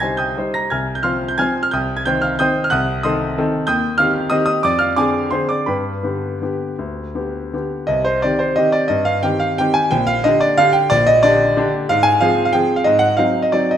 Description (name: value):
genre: classical, piano waltz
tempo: 157-196 BPM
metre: 3/4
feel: rubato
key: C minor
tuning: A4 = 440 Hz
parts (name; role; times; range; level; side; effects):
- clear grand piano; solo; 0.0-13.8 s; Bb1 to C7; -15 LUFS; equal; none
room: wet recital hall reverb, RT60 1.4 s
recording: none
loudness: -15 LUFS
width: side -9 dB against mid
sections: 0.0-7.9 A section; 7.9-13.8 B section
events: none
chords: 0.0 Cm; 0.7 Fm/C; 1.7 Cm; 2.7 Cdim7; 3.7 Cm/Eb; 4.6 Dm7b5/F; 5.7 G; 7.9 Cm; 9.9 Gm/Bb; 11.9 Fm/Ab; 12.8 Ab7